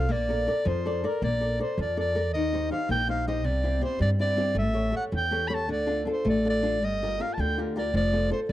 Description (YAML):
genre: italian folk, Italian serenade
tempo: 107 BPM (dotted quarters)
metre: 6/8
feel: straight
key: Bb major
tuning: A4 = 440 Hz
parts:
  - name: warm soprano saxophone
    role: melody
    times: 0.0-8.5 s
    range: Bb4 to Cb6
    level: -28 LUFS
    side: right 1 dB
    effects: none
  - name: flamenco guitar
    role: accompaniment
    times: 0.0-8.5 s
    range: C3 to D5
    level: -30 LUFS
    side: left 2 dB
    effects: none
  - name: upright bass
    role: bass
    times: 0.0-8.5 s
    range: F1 to G2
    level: -28 LUFS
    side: equal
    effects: none
room: small room ambience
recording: dry, close 1970s-style studio recording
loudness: -24 LUFS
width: side -14 dB against mid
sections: 0.0-1.2 A section; 1.2-8.5 A section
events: none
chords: 0.1 Bbmaj7; 2.3 Eb6; 3.4 C; 4.6 A7; 5.7 Dm; 6.8 Gm7; 7.9 F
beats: | 0.10 0.66 | 1.22 1.78 | 2.34 2.89 | 3.44 4.00 | 4.56 5.12 | 5.69 6.25 | 6.82 7.38 | 7.94 8.49